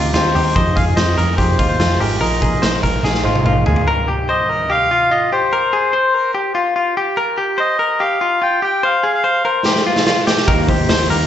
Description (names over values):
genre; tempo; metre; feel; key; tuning
jangly indie pop; 145 BPM; 4/4; straight; Eb major; A4 = 440 Hz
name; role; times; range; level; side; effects
dark upright piano; accompaniment; 0.0-3.9, 10.5-11.3 s; Bb3 to C5; -24 LUFS; right 2 dB; slapback echo
electric guitar through a small old amp; accompaniment; 0.0-3.9, 10.5-11.3 s; F2 to Bb4; -27 LUFS; right 3 dB; phaser, slapback echo
direct-recorded clean electric guitar; arpeggios; 0.0-11.3 s; F4 to C5; -18 LUFS; left 3 dB; slapback echo, tape echo
vintage muted picked electric bass; bass; 0.0-3.8, 10.5-11.3 s; Ab1 to F2; -18 LUFS; equal; none
melodica; melody; 0.1-9.8 s; Bb4 to G5; -18 LUFS; left 1 dB; slapback echo, tape echo
raw garage drum kit; drums; 0.1-3.9, 9.7-11.2 s; hi-hat, kick drum, snare drum, toms; -18 LUFS; right 1 dB; none
room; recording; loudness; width
light reverb; live gig heard through the venue's PA, club reverb, nothing above 8.0 kHz; -13 LUFS; side -10 dB against mid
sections
0.0-3.9 A section; 3.9-11.3 B section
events
drum fill 3.0-3.9, 9.7-10.5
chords
0.0 Eb6; 0.6 Fm7; 2.2 Bb7sus4; 3.9 Eb; 5.5 Abadd9; 7.0 Eb; 8.6 Fm; 10.5 Eb